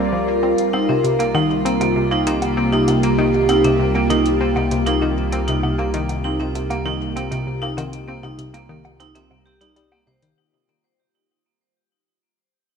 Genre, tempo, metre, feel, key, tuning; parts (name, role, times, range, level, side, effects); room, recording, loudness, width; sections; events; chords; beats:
ambient, sequencer-driven space music; 98 BPM; 4/4; straight; C minor; A4 = 440 Hz
expressive synth lead; melody; 0.0-0.5 s; D5; -30 LUFS; left 3 dB; lush chorus, shimmer reverb, ping-pong delay
evolving wavetable pad; sustained chords; 0.0-10.4 s; G3 to Bb4; -20 LUFS; right 1 dB; chorus, built-in reverb, phaser, shimmer reverb
analog pluck; riff; 0.0-10.3 s; C3 to G4; -24 LUFS; left 1 dB; chorus, shimmer reverb, ping-pong delay
fat analog bass; bass; 0.0-10.3 s; C2; -25 LUFS; equal
electronic hi-hat and woodblock; percussion; 0.6-10.3 s; -33 LUFS; equal; ping-pong delay
vibraphone with hard mallets; arpeggios; 0.7-10.2 s; Bb3 to C5; -24 LUFS; right 1 dB; auto-pan, shimmer reverb, ping-pong delay
wet plate reverb, RT60 2.9 s; dreamy mix soaked in reverb, cassette tape; -16 LUFS; side -6 dB against mid
0.0-10.4 A section
fade-out 3.8-10.4
0.0 Cm7
| 0.58 1.19 1.81 2.42 | 3.03 3.64 4.25 4.87 | 5.48 6.09 6.70 7.32 | 7.93 8.54 9.15 9.77